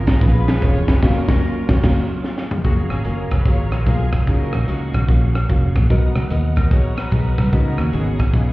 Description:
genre	uptempo gospel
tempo	148 BPM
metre	4/4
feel	swing 64% on 8ths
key	F# major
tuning	A4 = 441 Hz
part	warm studio string section	melody	0.0-8.5 s	A#3 to C#5	-29 LUFS	equal	none
part	dark grand piano	accompaniment	0.0-8.5 s	B2 to A#4	-26 LUFS	left 2 dB	none
part	bright tonewheel organ	sustained chords	0.0-8.5 s	F#3 to D#6	-30 LUFS	right 1 dB	fast rotary speaker, chorus vibrato
part	fingered electric bass	bass	0.0-8.5 s	E1 to D#2	-19 LUFS	equal	none
part	tight funk drum kit	drums	0.1-8.5 s	crash cymbal, hi-hat, kick drum, rim click, snare drum, toms	-18 LUFS	equal	none
room	light reverb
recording	heard muffled through a wall, stone room reverb, EQ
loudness	-15 LUFS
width	side -19 dB against mid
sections	0.0-2.7 A section; 2.7-8.5 B section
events	band accent 1.0-2.7; drum fill 2.2-2.7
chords	0.0 C#7; 1.0 F#maj7; 2.7 F#maj9; 5.9 Bmaj7; 7.5 C#9sus4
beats	0.22 0.62 | 1.03 1.43 1.84 2.25 | 2.65 3.06 3.46 3.87 | 4.28 4.68 5.09 5.49 | 5.90 6.31 6.71 7.12 | 7.53 7.93 8.34

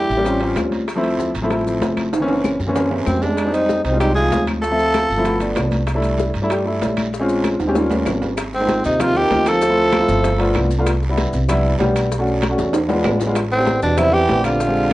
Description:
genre	Afro-Cuban jazz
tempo	192 BPM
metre	4/4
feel	straight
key	unclear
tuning	A4 = 440 Hz
part	growling tenor saxophone	melody	0.0-0.7, 3.1-5.5, 8.5-10.7, 13.5-14.9 s	C4 to A4	-18 LUFS	equal	none
part	breathy trombone	second line	0.0-0.2, 3.1-5.5, 8.5-10.7, 13.5-14.9 s	Ab2 to F4	-23 LUFS	right 2 dB	none
part	warm baby grand piano	accompaniment	0.0-14.9 s	E3 to E5	-20 LUFS	left 1 dB	none
part	upright bass	bass	0.0-14.9 s	F#1 to G2	-23 LUFS	equal	none
part	bongos	percussion	0.1-14.9 s	none	-29 LUFS	left 4 dB	none
part	congas	percussion	0.1-14.9 s	none	-26 LUFS	left 1 dB	none
part	guiro	percussion	0.1-14.9 s	none	-36 LUFS	right 3 dB	none
part	maracas	percussion	0.1-14.9 s	none	-40 LUFS	left 6 dB	none
part	timbales	percussion	0.3-14.9 s	none	-27 LUFS	right 4 dB	none
part	claves	percussion	0.6-14.6 s	none	-34 LUFS	left 3 dB	none
room	moderate club reverb, RT60 0.6 s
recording	worn, warbling old tape, cassette tape, warbly pitch drift, nothing above 10.7 kHz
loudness	-16 LUFS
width	side -16 dB against mid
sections	0.0-8.4 A section; 8.4-14.9 B section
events	drum fill 2.1-3.4, 7.6-8.4, 12.4-13.4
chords	0.3 A7alt; 0.9 Dm9; 2.1 F#7#11; 3.4 Fm9; 4.6 Dm9; 5.3 G13; 5.9 C69; 7.1 Bbm7; 7.8 Eb7; 8.4 Ab69; 9.6 Dm7; 10.2 G9; 10.9 Cmaj9; 12.1 Bm9; 12.7 E7b9; 13.4 Am11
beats	0.26 0.57 | 0.89 1.20 1.51 1.82 | 2.13 2.45 2.76 3.07 | 3.38 3.70 4.01 4.32 | 4.63 4.95 5.26 5.57 | 5.88 6.20 6.51 6.82 | 7.13 7.44 7.76 8.07 | 8.38 8.69 9.00 9.31 | 9.63 9.94 10.25 10.56 | 10.87 11.18 11.49 11.80 | 12.12 12.43 12.74 13.05 | 13.36 13.67 13.98 14.29 | 14.60 14.91

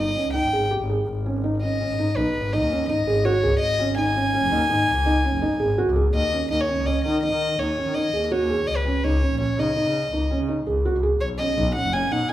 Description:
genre	contemporary instrumental, chamber music in an uneven meter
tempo	166 BPM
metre	7/4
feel	straight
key	G# minor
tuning	A4 = 436 Hz
part	rich violin	melody	0.0-12.3 s	B4 to G#5	-24 LUFS	left 1 dB	none
part	felt-muted upright piano	arpeggios	0.0-12.3 s	C#4 to G#4	-24 LUFS	right 2 dB	none
part	rich double bass	bass	0.0-12.3 s	F#1 to D#3	-25 LUFS	left 1 dB	none
room	moderate recital hall reverb, RT60 1.4 s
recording	minimal, uncompressed stereo recording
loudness	-20 LUFS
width	side -13 dB against mid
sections	0.0-6.1 A section; 6.1-12.3 B section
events	none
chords	0.0 D#7; 1.1 G#sus4; 3.6 G#5; 6.1 N.C.; 8.7 C#sus2; 11.2 G#m7 (rootless)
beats	0.35 0.71 | 1.08 1.44 1.80 2.17 2.53 2.89 3.25 | 3.61 3.98 4.34 4.70 5.06 5.42 5.79 | 6.15 6.51 6.87 7.23 7.59 7.96 8.32 | 8.68 9.04 9.40 9.76 10.12 10.49 10.85 | 11.21 11.57 11.93 12.29

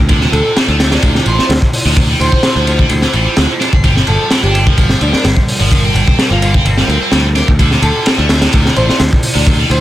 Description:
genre	breakbeat, breaks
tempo	128 BPM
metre	4/4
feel	straight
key	D minor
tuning	A4 = 440 Hz
part	dark analog pad	sustained chords	0.0-9.8 s	G3 to D5	-23 LUFS	right 1 dB	chorus, sidechain pumping
part	picked electric bass	bass	0.0-9.8 s	G1 to D2	-14 LUFS	equal	tube saturation
part	heavy high-gain guitar	riff	0.1-9.8 s	C3 to G4	-17 LUFS	right 1 dB	distortion, digital delay
part	crunchy breakbeat drum kit	drums	0.1-9.8 s	hi-hat, kick drum, ride cymbal, snare drum	-12 LUFS	equal	none
part	airy dreamy lead	melody	0.3-9.8 s	D4 to C5	-20 LUFS	equal	chorus, small speaker sound, digital delay
room	small room ambience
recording	none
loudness	-9 LUFS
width	side -14 dB against mid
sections	0.0-9.8 A section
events	none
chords	0.1 Dmadd9; 3.8 Gm7; 7.6 Dmadd9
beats	| 0.09 0.56 1.03 1.50 | 1.97 2.44 2.91 3.38 | 3.84 4.31 4.78 5.25 | 5.72 6.19 6.66 7.12 | 7.59 8.06 8.53 9.00 | 9.47

